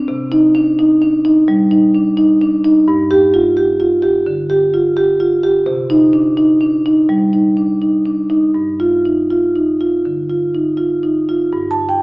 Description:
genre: classical, contemporary piece for solo marimba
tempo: 80-87 BPM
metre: 4/4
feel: straight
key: unclear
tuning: A4 = 440 Hz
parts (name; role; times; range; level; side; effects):
- marimba with soft mallets; solo; 0.0-12.0 s; G2 to A5; -11 LUFS; equal; none
room: wet stone room reverb, RT60 1.2 s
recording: small speaker sound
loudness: -11 LUFS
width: side -24 dB against mid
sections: 0.0-11.5 A section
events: none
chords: 0.1 Cmadd9; 2.9 G5; 5.7 Cm; 8.6 G5

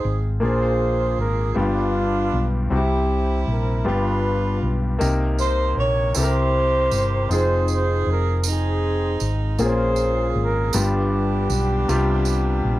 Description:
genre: slow gospel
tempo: 52 BPM (dotted quarters)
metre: 6/8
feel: straight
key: unclear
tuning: A4 = 440 Hz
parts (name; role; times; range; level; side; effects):
- mellow horn section; melody; 0.0-12.8 s; B3 to Db5; -23 LUFS; right 2 dB; slapback echo
- clear concert grand piano; accompaniment; 0.0-12.8 s; G2 to Bb4; -24 LUFS; left 2 dB; none
- hollow-body short-scale fingered electric bass; bass; 0.0-12.8 s; F1 to C2; -22 LUFS; equal; none
- tambourine; percussion; 5.0-12.6 s; none; -30 LUFS; right 10 dB; none
room: light reverb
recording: dry, close 1970s-style studio recording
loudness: -18 LUFS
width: side -16 dB against mid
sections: 0.0-12.8 A section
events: none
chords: 0.4 Bb7; 1.6 G7; 2.7 C; 3.9 G7; 5.0 Cm7; 6.2 C7; 7.3 Fm7; 9.6 Bbm7; 10.7 G7; 11.9 Csus4

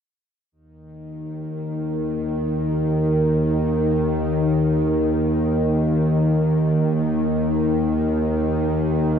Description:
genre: ambient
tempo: free time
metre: none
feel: none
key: unclear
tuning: A4 = 440 Hz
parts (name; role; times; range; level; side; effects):
- bowed-like drone; solo; 1.0-9.2 s; Eb2 to Eb3; -19 LUFS; equal; built-in reverb
room: wet huge ambient reverb, RT60 8.9 s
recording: none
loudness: -18 LUFS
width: side -7 dB against mid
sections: 0.5-9.2 A section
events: none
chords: none

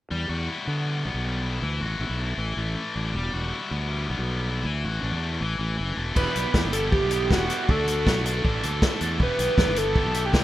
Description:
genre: indie rock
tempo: 158 BPM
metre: 4/4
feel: straight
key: E minor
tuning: A4 = 440 Hz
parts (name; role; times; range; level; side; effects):
- high-gain distorted guitar; riff; 0.1-10.4 s; E3 to A4; -29 LUFS; left 3 dB; distortion
- fuzz fingered electric bass; bass; 0.1-10.4 s; E1 to D3; -28 LUFS; equal; overdrive
- overdriven synth lead; melody; 6.2-10.4 s; F#4 to B4; -26 LUFS; right 1 dB; analog delay
- biting overdriven guitar; riff; 6.2-10.4 s; E3 to A4; -32 LUFS; right 8 dB; lush chorus
- vintage drum kit; drums; 6.2-10.4 s; crash cymbal, hi-hat, kick drum, snare drum; -24 LUFS; equal; none
room: light reverb, small room ambience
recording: rough home demo mix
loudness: -23 LUFS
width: side -14 dB against mid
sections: 0.1-6.2 A section; 6.2-10.4 B section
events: none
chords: 0.1 Emadd9; 1.6 Dadd9; 2.4 Asus4; 3.1 Emadd9; 4.7 Dadd9; 5.4 A5; 6.2 Emadd9; 7.7 D; 8.4 Asus4; 9.2 Em

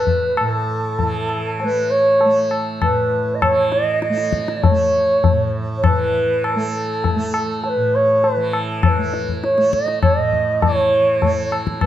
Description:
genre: indian classical, Hindustani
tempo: 100 BPM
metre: 5/4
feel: straight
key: A raga yaman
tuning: A4 = 440 Hz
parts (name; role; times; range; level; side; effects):
- mellow bansuri; melody; 0.0-11.9 s; A4 to D#5; -18 LUFS; right 1 dB; none
- tanpura; drone; 0.0-11.9 s; A2 to A3; -25 LUFS; right 2 dB; none
- tabla; percussion; 0.1-11.9 s; none; -20 LUFS; left 4 dB; none
room: moderate recital hall reverb, RT60 1.2 s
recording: dark, warm production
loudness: -15 LUFS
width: side -12 dB against mid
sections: 0.0-10.6 A section; 10.6-11.9 B section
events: speeding up 0.0-11.9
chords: none

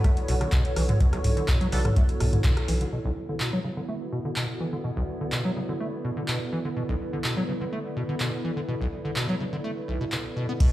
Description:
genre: acid house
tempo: 125 BPM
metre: 4/4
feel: straight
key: B minor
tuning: A4 = 441 Hz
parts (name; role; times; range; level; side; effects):
- lush unison pad; sustained chords; 0.0-10.7 s; D3 to C#5; -36 LUFS; equal; chorus, phaser, sidechain pumping
- acid bass, square; riff; 0.0-10.7 s; B1 to B3; -30 LUFS; equal; wide subtle chorus, sidechain pumping, tape echo
- booming analog drum machine; drums; 0.0-10.7 s; crash cymbal, handclaps, hi-hat, rim click, toms; -29 LUFS; equal; none
- electronic kick drum; drums; 0.0-2.5, 10.6-10.7 s; none; -22 LUFS; equal; none
- warbly tape-like pad; texture; 0.0-10.7 s; B3 to D5; -34 LUFS; right 1 dB; chorus, built-in reverb, phaser, sidechain pumping
- saturated sub bass; bass; 0.3-2.9 s; B1; -26 LUFS; equal; sidechain pumping
- band-passed chord stab; stabs; 1.7-1.8 s; B3 to A4; -40 LUFS; right 2 dB; phaser, analog chorus, tape echo
room: light reverb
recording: played on a big sound system in a bare room, large studio reverb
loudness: -24 LUFS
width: side -15 dB against mid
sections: 0.0-2.9 A section; 2.9-10.6 B section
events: band accent 2.4; filter sweep on analog synth pad 2.9-10.6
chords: 0.0 Bm

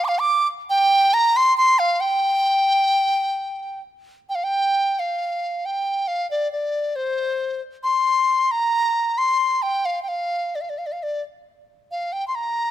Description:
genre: chinese traditional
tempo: 67 BPM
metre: 2/4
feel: rubato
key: G yu mode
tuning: A4 = 440 Hz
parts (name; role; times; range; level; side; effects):
- bright reedy large dizi; solo; 0.0-12.7 s; C5 to D6; -19 LUFS; equal; none
room: light reverb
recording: close, detailed microphones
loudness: -19 LUFS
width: side -12 dB against mid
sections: 0.0-4.3 A section; 4.3-12.7 B section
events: none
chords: none

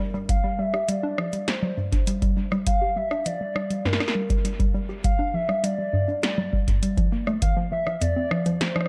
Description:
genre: IDM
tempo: 101 BPM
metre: 4/4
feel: straight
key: G dorian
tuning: A4 = 440 Hz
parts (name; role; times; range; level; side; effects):
- warbly dusty pluck; arpeggios; 0.0-8.9 s; F2 to G4; -29 LUFS; equal; chorus, dub echo
- warbly nostalgic lead; melody; 0.3-8.9 s; Bb4 to F5; -31 LUFS; equal; subtle chorus, dub echo
- electro analog drum machine; drums; 0.3-8.9 s; congas, hi-hat, rim click, snare drum; -31 LUFS; equal; dub echo
- electronic kick drum; drums; 0.3-7.5 s; none; -26 LUFS; equal; none
room: light reverb, digital ambience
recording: echo-heavy mix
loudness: -24 LUFS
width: mono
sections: 0.0-8.9 A section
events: none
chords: 0.0 G5; 7.4 F5

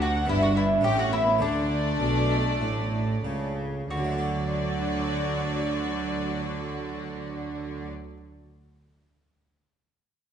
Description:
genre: classical, baroque-style concerto movement with solo episodes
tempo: 90-111 BPM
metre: 4/4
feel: straight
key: D major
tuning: A4 = 440 Hz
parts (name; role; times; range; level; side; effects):
- mandolin; melody; 0.0-7.9 s; D4 to G4; -28 LUFS; equal; none
- rich chamber violin section; melody; 0.0-7.9 s; D5 to G5; -35 LUFS; left 2 dB; none
- clear chamber violin section; second line; 0.0-7.9 s; D4 to G4; -34 LUFS; left 3 dB; none
- harpsichord; accompaniment; 0.0-8.2 s; D2 to A4; -36 LUFS; left 1 dB; none
- rich chamber viola section; accompaniment; 0.0-7.9 s; F#3 to D4; -34 LUFS; right 1 dB; none
- clear symphonic cello section; bass; 0.0-7.9 s; D2 to D3; -30 LUFS; right 3 dB; none
- rich chamber double bass section; bass; 0.0-7.9 s; G1 to D2; -32 LUFS; right 1 dB; none
room: wet recital hall reverb, RT60 1.6 s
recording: nothing above 10.4 kHz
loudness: -24 LUFS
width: side -8 dB against mid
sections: 0.0-3.9 A section; 3.9-9.2 B section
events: slowing down 0.0-3.9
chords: 0.3 Em7/G; 0.8 A; 1.4 D5; 3.9 D

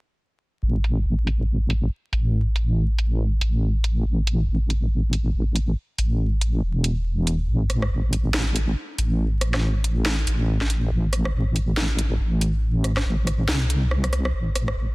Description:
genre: deep dubstep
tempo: 140 BPM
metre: 4/4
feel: swing 59% on 16ths, half-time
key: A minor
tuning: A4 = 435 Hz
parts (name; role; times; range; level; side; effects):
- deep soft wobble bass; bass; 0.6-14.9 s; E1 to C2; -21 LUFS; equal; chorus
- garage drum kit; drums; 0.8-14.8 s; hi-hat, rim click, snare drum; -27 LUFS; equal; overdrive, high-pass filter on hats, low-pass filter on hats, high-pass filter on snare, low-pass filter on snare
room: little or no reverb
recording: dense, heavily limited modern master, vinyl crackle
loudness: -20 LUFS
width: side -24 dB against mid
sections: 0.6-14.3 A section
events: filter sweep on drum 0.6-14.3; drum fill 13.9-14.3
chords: none

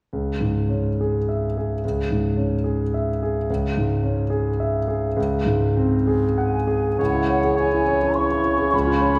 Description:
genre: classical, romantic movement for piano and orchestra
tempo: 93-110 BPM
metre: 3/4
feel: rubato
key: C# minor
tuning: A4 = 442 Hz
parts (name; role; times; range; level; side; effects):
- clear concert grand piano; melody; 0.1-9.2 s; C#2 to F#5; -22 LUFS; equal; none
- mellow hollow flute section; second line; 6.4-9.2 s; F#5 to C#6; -27 LUFS; equal; none
- clear clarinet; second line; 7.0-9.2 s; E4 to E#4; -31 LUFS; equal; none
- warm oboe; second line; 7.0-9.2 s; C#5; -30 LUFS; equal; none
- warm French horn section; sustained chords; 7.0-9.2 s; E3 to C#4; -30 LUFS; equal; none
room: wet scoring stage reverb, RT60 1.7 s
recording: heard from further back in the room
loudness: -22 LUFS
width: mono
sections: 0.1-7.0 A section; 7.0-9.2 B section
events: none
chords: 0.1 C#m; 5.2 G#7/C#; 7.0 C#m

